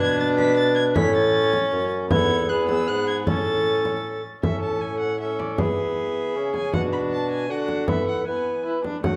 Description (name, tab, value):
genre	classical, renaissance-style consort dance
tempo	156 BPM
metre	3/4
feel	straight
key	A major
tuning	A4 = 440 Hz
part	rich violin	melody	0.0-9.2 s	D5 to B6	-33 LUFS	equal	none
part	tenor recorder	second line	0.0-9.2 s	F#4 to D5	-29 LUFS	equal	none
part	rich viola	accompaniment	0.0-9.2 s	A3 to E4	-31 LUFS	equal	none
part	mellow bassoon	bass	0.0-9.2 s	E2 to F#3	-27 LUFS	equal	none
part	frame drum	percussion	0.4-9.2 s	none	-29 LUFS	equal	none
room	wet recital hall reverb, RT60 1.4 s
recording	dark, warm production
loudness	-23 LUFS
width	mono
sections	0.0-4.4 A section; 4.4-9.2 B section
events	none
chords	0.0 Bm; 1.0 A; 2.1 Esus4; 2.5 E; 3.3 A; 5.6 E; 6.7 Bm; 7.9 Esus4; 8.3 E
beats	0.20 0.58 | 0.96 1.34 1.73 | 2.11 2.50 2.88 | 3.27 3.66 4.04 | 4.43 4.82 5.20 | 5.58 5.97 6.35 | 6.73 7.12 7.50 | 7.88 8.27 8.66 | 9.04